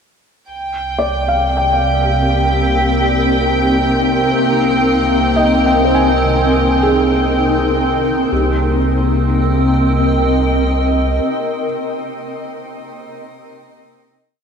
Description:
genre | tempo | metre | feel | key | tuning
ambient | 62 BPM | 4/4 | straight | unclear | A4 = 440 Hz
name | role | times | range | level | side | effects
granular cloud pad | sustained chords | 1.4-12.1 s | C4 to G5 | -17 LUFS | equal | built-in reverb, shimmer reverb
warm sub bass | bass | 0.5-11.2 s | C2 | -20 LUFS | equal | none
analog drone | drone | 1.4-11.6 s | C3 to Bb3 | -21 LUFS | left 1 dB | chorus
warm chamber violin section | texture | 0.5-8.3 s | G5 | -21 LUFS | right 2 dB | shimmer reverb
felt-muted upright piano | arpeggios | 1.0-14.4 s | G4 to Ab5 | -21 LUFS | equal | ping-pong delay, shimmer reverb
room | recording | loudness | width
wet huge ambient reverb, RT60 9.2 s | cassette tape | -12 LUFS | side -6 dB against mid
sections
0.5-8.3 A section; 8.3-12.2 final chord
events
none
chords
0.5 Cm7; 4.4 Abadd9/C

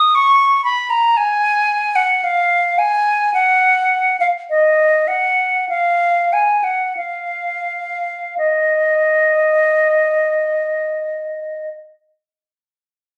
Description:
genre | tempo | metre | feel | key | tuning
classical, baroque-style fantasia for unaccompanied flute | 41-59 BPM | 4/4 | rubato | Eb minor | A4 = 440 Hz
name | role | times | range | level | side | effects
concert flute | solo | 0.0-11.7 s | Eb5 to Eb6 | -16 LUFS | equal | none
room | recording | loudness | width
light reverb | recorded on a phone in the room, studio reverb | -16 LUFS | mono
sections
0.0-8.4 A section; 8.4-13.2 B section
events
slowing down 0.0-8.4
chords
none

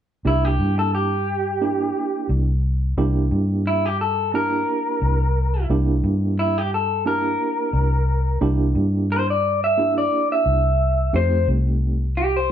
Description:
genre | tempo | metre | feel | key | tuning
straight-eighth soul blues | 88 BPM | 4/4 | swing 54% on 16ths | C mixolydian | A4 = 440 Hz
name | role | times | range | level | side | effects
tine electric piano | accompaniment | 0.2-12.0 s | A3 to G4 | -25 LUFS | right 5 dB | fast tremolo
vintage muted fingered electric bass | bass | 0.2-12.5 s | C2 to G2 | -21 LUFS | left 1 dB | none
electric guitar through a small old amp | melody | 0.3-12.5 s | E4 to E5 | -21 LUFS | left 1 dB | none
room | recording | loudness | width
moderate large studio reverb, RT60 0.9 s | band playing live in one room | -18 LUFS | side -9 dB against mid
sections
0.2-12.5 A section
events
clean electric guitar solo 0.2-12.5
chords
0.2 C9; 11.1 F9

